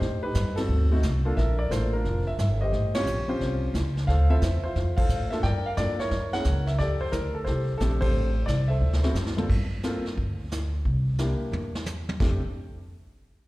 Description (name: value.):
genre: jazz piano trio.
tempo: 177 BPM.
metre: 4/4.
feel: swing 65% on 8ths.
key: unclear.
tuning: A4 = 441 Hz.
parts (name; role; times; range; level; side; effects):
warm concert grand piano; melody; 0.0-12.4 s; G2 to G5; -29 LUFS; equal; slapback echo.
upright bass; bass; 0.0-12.4 s; F1 to A2; -25 LUFS; equal; none.
vintage brush drum kit; drums; 0.0-12.3 s; brushed snare drum, crash cymbal, hi-hat, kick drum, ride cymbal, snare drum, toms; -31 LUFS; equal; none.
room: studio reverb.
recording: live gig heard through the venue's PA, recital hall reverb.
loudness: -23 LUFS.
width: side -19 dB against mid.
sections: 0.0-9.5 A section; 9.5-12.2 B section; 12.2-13.5 C section.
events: band accent 0.5, 2.9, 4.9, 8.0; drum fill 8.8-9.5, 11.5-12.2.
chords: 0.0 Am7b5; 0.7 D7; 1.4 Gm9; 2.7 A7alt; 4.1 Dm9; 5.4 Gm7; 6.1 Gb7; 6.8 F69; 8.8 D7; 9.5 G5; 10.8 C7; 12.2 N.C..